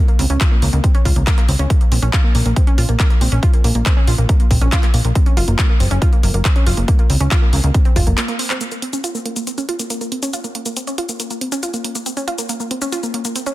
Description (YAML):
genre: uplifting trance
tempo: 139 BPM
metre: 4/4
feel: straight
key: Bb minor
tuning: A4 = 440 Hz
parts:
  - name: wide unison pluck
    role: arpeggios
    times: 0.0-13.5 s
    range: Bb3 to F4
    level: -23 LUFS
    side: right 2 dB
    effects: sidechain pumping, dub echo
  - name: big-room dance drum kit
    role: drums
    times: 0.1-13.5 s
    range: handclaps, hi-hat, shaker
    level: -23 LUFS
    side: left 1 dB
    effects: overdrive, sidechain pumping on hats, sidechain pumping on perc
  - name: plucky analog bass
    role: bass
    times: 0.2-8.1 s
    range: F1 to Db2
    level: -16 LUFS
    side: equal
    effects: sidechain pumping
  - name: electronic kick drum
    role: drums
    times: 0.4-8.0 s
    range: none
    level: -14 LUFS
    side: equal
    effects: overdrive
room: little or no reverb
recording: dense, heavily limited modern master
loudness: -14 LUFS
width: side -16 dB against mid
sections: 0.0-8.6 A section; 8.6-13.5 B section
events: break 8.2-8.6; drum fill 8.2-8.6; filter sweep on synth arpeggio sound 8.6-13.5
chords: 0.0 N.C.; 5.2 Gb; 6.9 N.C.; 7.7 F5; 8.6 Bbmadd9